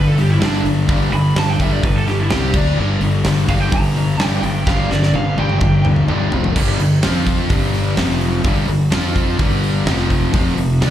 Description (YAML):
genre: hard rock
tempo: 127 BPM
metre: 4/4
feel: straight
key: unclear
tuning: A4 = 440 Hz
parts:
  - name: lead guitar through a small cranked amp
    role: melody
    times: 0.0-5.8 s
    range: D4 to B5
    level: -24 LUFS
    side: right 3 dB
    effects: overdrive, slapback echo
  - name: cranked stack guitar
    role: riff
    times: 0.0-10.9 s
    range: F2 to F4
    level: -23 LUFS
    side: right 6 dB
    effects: overdrive
  - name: overdriven semi-hollow guitar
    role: riff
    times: 0.0-10.9 s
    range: F2 to F4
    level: -21 LUFS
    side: left 6 dB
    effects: none
  - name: tight distorted guitar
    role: riff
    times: 0.0-10.9 s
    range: F2 to F4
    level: -26 LUFS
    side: equal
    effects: distortion, slapback echo
  - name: fuzz fingered electric bass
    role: bass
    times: 0.0-10.9 s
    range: F1 to F2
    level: -19 LUFS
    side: equal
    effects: overdrive
  - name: huge arena drum kit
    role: drums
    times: 0.2-10.9 s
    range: crash cymbal, hi-hat, kick drum, snare drum, toms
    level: -20 LUFS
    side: equal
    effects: none
room: small room reverb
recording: live gig heard through the venue's PA, club reverb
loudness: -14 LUFS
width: side -11 dB against mid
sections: 0.0-6.6 A section; 6.6-10.9 B section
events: lead electric guitar solo 0.0-6.6; drum fill 4.7-6.6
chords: 0.0 G5; 2.3 C5; 2.5 D5; 2.8 G5; 6.3 F5; 6.6 G5; 7.0 F5; 7.5 G5; 8.0 F5; 8.4 G5; 8.9 F5; 9.4 G5; 9.9 F5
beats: 0.41 | 0.89 1.36 1.84 2.31 | 2.78 3.25 3.73 4.20 | 4.67 5.14 5.62 6.09 | 6.56 7.03 7.50 7.98 | 8.45 8.92 9.39 9.87 | 10.34 10.81